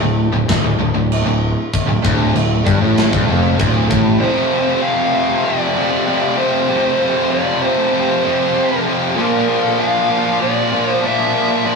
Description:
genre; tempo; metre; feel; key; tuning
heavy metal; 97 BPM; 4/4; straight; unclear; A4 = 440 Hz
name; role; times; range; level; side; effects
distorted electric guitar; riff; 0.0-11.8 s; D2 to Bb3; -23 LUFS; equal; overdrive
heavy high-gain guitar; riff; 0.0-11.8 s; D2 to F3; -20 LUFS; left 8 dB; distortion
heavy high-gain guitar; riff; 0.0-11.8 s; D2 to Bb3; -20 LUFS; right 6 dB; distortion
fuzz fingered electric bass; bass; 0.0-4.2 s; D1 to A1; -17 LUFS; equal; overdrive
tight metal drum kit; drums; 0.5-4.0 s; china cymbal, kick drum, snare drum; -19 LUFS; equal; none
high-gain lead guitar; melody; 4.2-11.8 s; Bb4 to F5; -18 LUFS; right 1 dB; distortion
room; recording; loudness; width
moderate stone room reverb, RT60 0.9 s; rough rehearsal-room recording, tube saturation; -13 LUFS; side -4 dB against mid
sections
0.0-4.2 A section; 4.2-11.8 B section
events
none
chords
0.0 Dm; 4.2 F5; 9.2 Bb

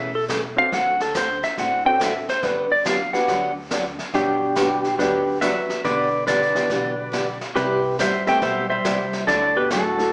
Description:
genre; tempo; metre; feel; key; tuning
country, western swing; 140 BPM; 4/4; swing 65% on 8ths; G major; A4 = 438 Hz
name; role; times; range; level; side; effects
clean lap steel guitar; melody; 0.0-10.1 s; D4 to G5; -23 LUFS; equal; none
picked steel-string acoustic guitar; accompaniment; 0.0-9.8 s; C3 to A4; -30 LUFS; equal; none
upright bass; bass; 0.0-10.0 s; E1 to D2; -40 LUFS; equal; none
vintage brush drum kit; drums; 0.3-10.1 s; brushed snare drum, hi-hat, kick drum, snare drum; -32 LUFS; equal; none
warm upright piano; accompaniment; 0.6-10.1 s; A3 to D5; -30 LUFS; equal; none
vintage hollow-body jazz guitar; second line; 4.2-10.1 s; A2 to A3; -32 LUFS; equal; none
room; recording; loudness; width
wet large studio reverb, RT60 0.9 s; band playing live in one room, small speaker sound; -21 LUFS; mono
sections
0.0-4.1 A section; 4.1-10.1 B section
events
electric slide guitar solo 0.0-4.1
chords
0.0 A; 0.7 D7; 2.4 Gmaj7; 5.8 Em7; 7.6 Cmaj7; 9.3 Dadd9

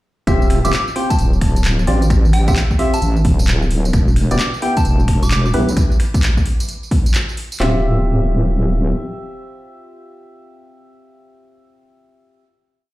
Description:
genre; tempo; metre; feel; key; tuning
UK garage, two-step garage; 131 BPM; 4/4; swing 64% on 16ths; D dorian; A4 = 440 Hz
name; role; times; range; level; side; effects
percussive organ stab; stabs; 0.3-12.4 s; B3 to G5; -22 LUFS; equal; lush chorus, tape echo
deep soft wobble bass; bass; 0.3-8.9 s; D1 to B1; -16 LUFS; equal; chorus
house drum kit; drums; 0.3-7.7 s; handclaps, kick drum, snare drum; -16 LUFS; equal; overdrive
house drum kit; drums; 0.3-7.6 s; finger snaps, handclaps, hi-hat, tambourine; -25 LUFS; equal; overdrive
soft synth bell; melody; 0.6-5.5 s; G5 to D6; -26 LUFS; equal; chorus, phaser, tape echo
room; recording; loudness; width
light reverb; played on a big sound system in a bare room, large studio reverb; -14 LUFS; side -17 dB against mid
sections
0.3-7.6 drop; 7.6-11.3 final chord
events
drop 0.3-7.6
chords
0.3 Dm11; 3.9 Em; 7.6 Dm11

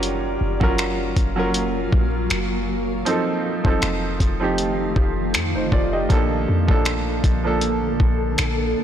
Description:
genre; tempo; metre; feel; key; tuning
contemporary R&B; 79 BPM; 4/4; swing 54% on 16ths; Bb major; A4 = 440 Hz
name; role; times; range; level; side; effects
clear concert grand piano; accompaniment; 0.0-8.8 s; F3 to Eb5; -23 LUFS; right 2 dB; none
granular cloud pad; sustained chords; 0.0-8.8 s; D3 to A4; -26 LUFS; equal; built-in reverb
clean 808-style bass; bass; 0.0-8.7 s; F1 to F2; -25 LUFS; equal; none
dusty soul sampler-style drum kit; drums; 0.0-8.6 s; finger snaps, hi-hat, kick drum; -21 LUFS; equal; soft clipping on snare
room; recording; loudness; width
light reverb; blown-out, overdriven recording, overdrive; -18 LUFS; side -9 dB against mid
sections
0.0-8.8 A section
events
none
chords
0.0 Gbmaj7; 3.1 F7; 6.1 Bbmaj7

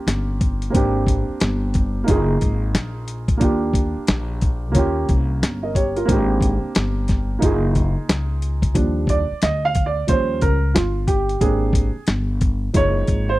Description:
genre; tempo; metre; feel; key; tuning
hip hop, jazz-hop; 90 BPM; 4/4; swing 63% on 16ths; Eb major; A4 = 440 Hz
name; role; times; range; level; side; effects
dark upright piano; accompaniment; 0.0-13.4 s; F3 to F5; -22 LUFS; right 2 dB; none
upright bass; bass; 0.1-13.4 s; Gb1 to Eb2; -22 LUFS; equal; none
dusty soul sampler-style drum kit; drums; 0.1-13.3 s; hi-hat, kick drum, snare drum; -19 LUFS; left 1 dB; none
room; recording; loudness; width
little or no reverb; dry, close 1970s-style studio recording; -17 LUFS; side -17 dB against mid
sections
0.0-8.7 A section; 8.7-13.4 B section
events
upright piano solo 8.7-13.4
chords
0.0 Eb9 (rootless); 0.7 Abmaj9#11; 2.1 Gbmaj13; 3.4 Ebmaj9; 4.7 Eb9; 6.1 Abmaj9#11; 7.4 Gbmaj13; 8.7 Ebmaj9; 10.1 Eb9; 11.4 Abmaj9#11; 12.7 Gbmaj13

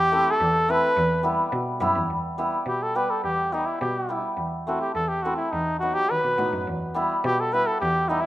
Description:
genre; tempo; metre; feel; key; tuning
klezmer; 105 BPM; 2/4; straight; E harmonic minor; A4 = 440 Hz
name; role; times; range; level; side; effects
warm cornet; melody; 0.0-8.3 s; D#4 to B4; -23 LUFS; equal; none
bright cello; bass; 0.0-8.2 s; E2 to D#3; -30 LUFS; equal; none
hammered dulcimer; accompaniment; 0.1-8.3 s; F#3 to G4; -27 LUFS; equal; none
room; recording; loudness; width
moderate plate reverb, RT60 2.2 s; rough home demo mix; -22 LUFS; side -15 dB against mid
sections
0.0-2.1 A section; 2.1-8.3 B section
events
cornet solo 0.0-2.1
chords
0.0 Am/E; 1.0 Em; 4.4 Am/E; 5.5 B/E; 6.7 Em

